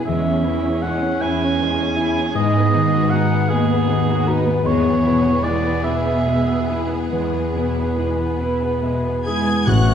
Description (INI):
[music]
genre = cinematic, emotional film score for orchestra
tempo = 46-54 BPM (dotted quarters)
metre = 6/8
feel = rubato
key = unclear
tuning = A4 = 439 Hz
[part]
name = warm symphonic violin section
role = melody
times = 0.0-9.9 s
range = G#4 to G#6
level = -30 LUFS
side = left 3 dB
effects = none
[part]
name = rich symphonic violin section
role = second line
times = 0.0-9.9 s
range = G#3 to G#5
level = -28 LUFS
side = left 2 dB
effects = none
[part]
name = dark concert grand piano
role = accompaniment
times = 0.0-9.9 s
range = A1 to F#4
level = -22 LUFS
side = left 3 dB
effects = none
[part]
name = warm symphonic viola section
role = accompaniment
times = 0.0-9.4 s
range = B3 to C#4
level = -27 LUFS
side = right 4 dB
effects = none
[part]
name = concert harp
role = arpeggios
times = 0.0-9.9 s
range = E2 to G#5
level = -25 LUFS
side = left 4 dB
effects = none
[part]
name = rich symphonic cello section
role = bass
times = 0.0-9.9 s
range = D#2 to G#3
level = -24 LUFS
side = right 3 dB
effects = none
[part]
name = warm cor anglais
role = second line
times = 0.1-9.9 s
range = F#4 to G#5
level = -23 LUFS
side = right 2 dB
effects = none
[part]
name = clear clarinet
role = second line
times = 9.3-9.9 s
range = F#4 to G#4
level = -26 LUFS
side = equal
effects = none
[part]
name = mellow French horn section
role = sustained chords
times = 9.7-9.9 s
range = A3 to C#4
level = -26 LUFS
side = left 7 dB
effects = none
[part]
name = rich symphonic double bass section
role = bass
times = 9.7-9.9 s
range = A1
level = -21 LUFS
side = right 4 dB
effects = none
[part]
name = timpani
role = percussion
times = 9.7-9.9 s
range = A2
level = -18 LUFS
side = right 1 dB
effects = none
[sound]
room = wet scoring stage reverb, RT60 1.7 s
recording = heard from further back in the room, nothing above 11.0 kHz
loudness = -16 LUFS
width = side -8 dB against mid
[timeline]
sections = 0.0-9.7 A section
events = none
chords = 0.1 C#m/E; 2.3 G#m7; 4.7 E